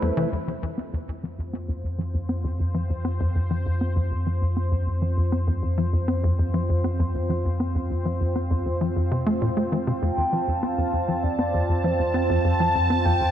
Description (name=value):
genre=ambient, sequencer-driven space music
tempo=99 BPM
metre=4/4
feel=straight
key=F major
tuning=A4 = 440 Hz
part: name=sweeping resonant pad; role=sustained chords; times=0.0-13.3 s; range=A3 to A5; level=-30 LUFS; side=right 1 dB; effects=chorus
part: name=tight sequencer bass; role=riff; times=0.0-13.3 s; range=E2 to C4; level=-26 LUFS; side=equal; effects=analog chorus, ping-pong delay
part: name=warm sub bass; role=bass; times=0.3-13.3 s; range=F2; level=-26 LUFS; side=equal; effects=none
part: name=mellow horn-like synth lead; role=melody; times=10.0-13.3 s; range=C5 to A5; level=-25 LUFS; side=right 1 dB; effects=chorus, cassette tape, ping-pong delay
room=moderate lush hall reverb, RT60 3.0 s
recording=dreamy mix soaked in reverb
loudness=-22 LUFS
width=side -10 dB against mid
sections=0.3-13.3 A section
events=fade-in on analog synth pad 0.3-13.3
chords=0.3 F